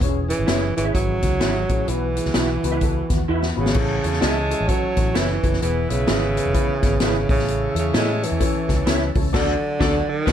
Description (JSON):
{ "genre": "uptempo 1960s-style soul", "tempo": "129 BPM", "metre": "4/4", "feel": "swing 61% on 8ths", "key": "unclear", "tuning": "A4 = 440 Hz", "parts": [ { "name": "dark upright piano", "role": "accompaniment", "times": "0.0-10.3 s", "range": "A2 to E5", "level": "-28 LUFS", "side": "left 6 dB", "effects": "none" }, { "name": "percussive tonewheel organ", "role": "sustained chords", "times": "0.0-10.3 s", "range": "D#3 to C#5", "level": "-34 LUFS", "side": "left 3 dB", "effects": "none" }, { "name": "vintage muted fingered electric bass", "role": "bass", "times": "0.0-10.3 s", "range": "E1 to A2", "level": "-24 LUFS", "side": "equal", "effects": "none" }, { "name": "swinging big-band drum kit", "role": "drums", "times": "0.0-10.3 s", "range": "crash cymbal, hi-hat, kick drum, snare drum", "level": "-23 LUFS", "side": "equal", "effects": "none" }, { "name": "breathy tenor saxophone", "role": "melody", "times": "0.3-10.3 s", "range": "C#3 to G#3", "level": "-24 LUFS", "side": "right 3 dB", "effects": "none" }, { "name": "electric guitar through a small old amp", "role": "stabs", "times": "0.5-10.3 s", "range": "B3 to E5", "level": "-27 LUFS", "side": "right 5 dB", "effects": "ensemble chorus" }, { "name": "warm horn section", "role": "second line", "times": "3.7-10.3 s", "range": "D#4 to A5", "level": "-31 LUFS", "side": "left 2 dB", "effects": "none" } ], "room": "light reverb", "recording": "dark, warm production", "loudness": "-18 LUFS", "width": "side -9 dB against mid", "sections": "0.0-3.8 A section; 3.8-10.3 B section", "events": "drum fill 3.3-3.8; band accent 9.3-10.3", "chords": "0.0 C#m/E; 1.9 Bsus4; 3.8 A; 5.6 E; 7.2 A; 9.3 D", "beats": "| 0.01 0.48 0.95 1.42 | 1.88 2.35 2.82 3.28 | 3.75 4.22 4.68 5.15 | 5.62 6.08 6.55 7.02 | 7.48 7.95 8.41 8.88 | 9.34 9.81 10.27" }